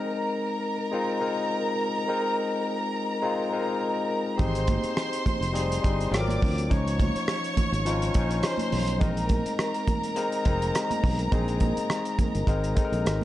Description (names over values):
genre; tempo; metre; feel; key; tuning
lush 1970s-style soul; 104 BPM; 4/4; swing 54% on 16ths; unclear; A4 = 440 Hz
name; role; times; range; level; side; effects
rich studio violin section; second line; 0.0-13.2 s; Bb4 to D6; -30 LUFS; right 1 dB; none
barky tine electric piano; accompaniment; 0.0-13.2 s; F3 to Db5; -29 LUFS; left 3 dB; overdrive
fingered electric bass; bass; 4.4-13.2 s; F1 to D2; -28 LUFS; equal; none
cloth-damped thuddy drum kit; drums; 4.4-13.2 s; hi-hat, kick drum, rim click; -28 LUFS; equal; none
congas; percussion; 4.4-13.2 s; none; -34 LUFS; right 5 dB; none
room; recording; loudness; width
light reverb, studio reverb; dark, warm production, nothing above 10.8 kHz; -24 LUFS; side -14 dB against mid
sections
0.0-13.2 A section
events
none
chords
0.0 Bb9sus4; 4.4 Abmaj7; 6.1 Ab13; 6.7 Dbmaj9; 9.0 Bb9sus4